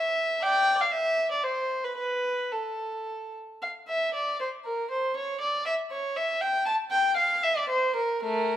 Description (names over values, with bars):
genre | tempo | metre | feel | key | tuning
classical, baroque-style suite movement for unaccompanied violin | 106-121 BPM | 3/4 | rubato | A minor, D minor from 3.6 s | A4 = 439 Hz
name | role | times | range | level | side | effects
dark violin | solo | 0.0-8.6 s | A3 to A5 | -25 LUFS | equal | none
room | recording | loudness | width
moderate recital hall reverb, RT60 1.6 s | none | -25 LUFS | side -11 dB against mid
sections
0.0-3.6 A section; 3.6-8.6 A section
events
none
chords
none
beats
| 0.42 0.92 1.44 | 1.97 2.52 3.07 | 3.62 4.14 4.65 | 5.16 5.66 6.16 | 6.66 7.17 7.68 | 8.23